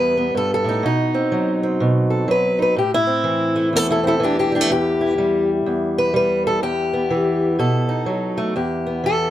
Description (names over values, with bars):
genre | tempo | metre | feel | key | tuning
acoustic country blues, solo or duo | 124 BPM | 4/4 | swing 62% on 8ths | E minor | A4 = 440 Hz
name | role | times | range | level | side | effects
fingerpicked steel-string acoustic guitar | solo | 0.0-9.3 s | E2 to B4 | -17 LUFS | equal | none
room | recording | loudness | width
moderate studio reverb, RT60 0.5 s | none | -17 LUFS | side -12 dB against mid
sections
0.0-8.6 A section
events
none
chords
0.0 Em; 0.8 B(b9); 2.8 Am; 4.7 Em; 7.6 B7; 8.6 Em